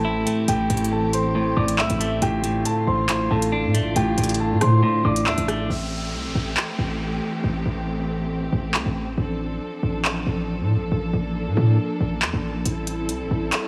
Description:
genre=hip hop, drill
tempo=138 BPM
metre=4/4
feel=half-time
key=A phrygian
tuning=A4 = 440 Hz
part: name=dark baby grand piano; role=melody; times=0.0-5.7 s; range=G4 to E6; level=-28 LUFS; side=equal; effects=low-pass filter, tape echo
part: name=clean electric guitar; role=accompaniment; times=0.0-5.7 s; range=A2 to E4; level=-26 LUFS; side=equal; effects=low-pass filter
part: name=warm chamber string section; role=sustained chords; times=0.0-13.7 s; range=D3 to A4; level=-30 LUFS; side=equal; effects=none
part: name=hard-hitting 808-style bass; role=bass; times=0.0-13.5 s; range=A1 to A2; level=-27 LUFS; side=equal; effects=none
part: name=drill drum kit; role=drums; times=0.3-13.6 s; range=handclaps, hi-hat, rim click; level=-28 LUFS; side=equal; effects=none
part: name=downlifter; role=sound effects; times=5.7-9.2 s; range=none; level=-38 LUFS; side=equal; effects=none
room=light reverb, digital ambience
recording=none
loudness=-23 LUFS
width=mono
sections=0.0-5.7 A section; 5.7-13.7 B section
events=break 5.7-12.7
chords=0.0 Am7; 2.2 Dm7/A; 4.0 Bbmaj7/A (rootless); 5.7 Am7; 9.2 Dm7/A; 10.9 Bbmaj7/A; 12.7 Am7

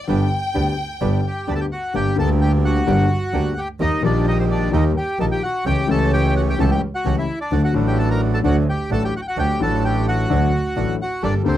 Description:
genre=tango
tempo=129 BPM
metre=4/4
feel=rubato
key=unclear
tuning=A4 = 440 Hz
part: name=clear chamber violin section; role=second line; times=0.0-1.4 s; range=G5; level=-26 LUFS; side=left 3 dB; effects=none
part: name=warm concert grand piano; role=accompaniment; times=0.1-11.6 s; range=G1 to A4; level=-21 LUFS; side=left 5 dB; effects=none
part: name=bandoneon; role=stabs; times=0.1-11.6 s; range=A3 to A4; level=-28 LUFS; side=right 8 dB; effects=slapback echo
part: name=clear double bass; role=bass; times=0.1-11.6 s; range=G1 to Eb2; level=-20 LUFS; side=right 2 dB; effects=none
part: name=bandoneon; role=melody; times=1.3-11.6 s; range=C4 to B5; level=-24 LUFS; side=equal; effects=none
room=little or no reverb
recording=dry, close 1970s-style studio recording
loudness=-17 LUFS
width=side -12 dB against mid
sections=0.0-1.9 A section; 1.9-11.6 B section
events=violin section solo 0.0-1.9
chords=0.1 G; 1.9 Gm; 3.8 Eb; 5.7 A7/C#; 7.5 D

